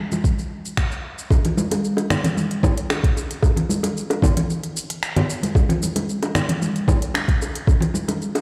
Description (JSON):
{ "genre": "downtempo", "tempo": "113 BPM", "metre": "4/4", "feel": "straight", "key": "none", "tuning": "none", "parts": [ { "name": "organic electronic drum kit", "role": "drums", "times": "0.1-8.4 s", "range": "congas, finger snaps, hi-hat, shaker", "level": "-27 LUFS", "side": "equal", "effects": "studio reverb" }, { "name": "congas and bongos", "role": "percussion", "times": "0.1-8.4 s", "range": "none", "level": "-26 LUFS", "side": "equal", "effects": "none" }, { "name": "electronic kick drum", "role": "drums", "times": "0.2-7.8 s", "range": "none", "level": "-20 LUFS", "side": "equal", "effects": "studio reverb" } ], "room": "wet concert hall reverb, RT60 2.2 s", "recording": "played on a big sound system in a bare room, large studio reverb", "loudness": "-21 LUFS", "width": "mono", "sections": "0.0-1.3 A section; 1.3-8.4 B section", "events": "none", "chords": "none" }